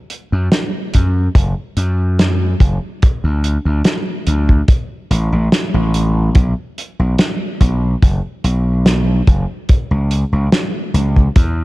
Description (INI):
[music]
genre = vaporwave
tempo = 72 BPM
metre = 4/4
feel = straight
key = B minor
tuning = A4 = 437 Hz
[part]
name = warm soul drum kit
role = drums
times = 0.1-11.5 s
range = hi-hat, snare drum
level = -18 LUFS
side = equal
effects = none
[part]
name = gritty slap bass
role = bass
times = 0.3-11.6 s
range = F#1 to F#2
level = -14 LUFS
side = equal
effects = overdrive
[part]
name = kick drum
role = drums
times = 0.9-11.5 s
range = none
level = -12 LUFS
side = equal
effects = none
[sound]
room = light reverb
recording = dark, warm production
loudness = -13 LUFS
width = side -19 dB against mid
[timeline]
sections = 0.0-11.6 A section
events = none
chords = none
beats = 0.52 1.36 2.19 | 3.02 3.86 4.69 5.52 | 6.36 7.19 8.02 8.86 | 9.69 10.52 11.36